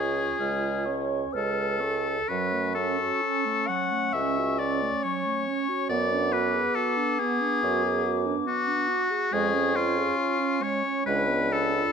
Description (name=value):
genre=classical, slow romantic movement for wind quintet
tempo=62-71 BPM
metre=4/4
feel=rubato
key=F# minor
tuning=A4 = 436 Hz
part: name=concert flute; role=melody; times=0.0-11.9 s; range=B5 to E#6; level=-33 LUFS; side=left 11 dB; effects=none
part: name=clear oboe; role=second line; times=0.0-11.9 s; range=E#4 to F#5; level=-27 LUFS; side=left 3 dB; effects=none
part: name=warm French horn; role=accompaniment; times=0.0-11.9 s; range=G#3 to D4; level=-33 LUFS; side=right 2 dB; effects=none
part: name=warm clarinet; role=accompaniment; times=0.0-11.9 s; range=F#3 to C#5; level=-32 LUFS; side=right 11 dB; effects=none
part: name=warm bassoon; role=bass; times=0.0-11.8 s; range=C#2 to F#2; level=-30 LUFS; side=right 3 dB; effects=none
room=moderate recital hall reverb, RT60 1.6 s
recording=none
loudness=-24 LUFS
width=side -6 dB against mid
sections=0.0-11.9 A section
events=none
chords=0.0 C#; 2.3 F#m; 5.9 G#m7b5/F#; 9.3 C#/E#; 11.1 C#7b9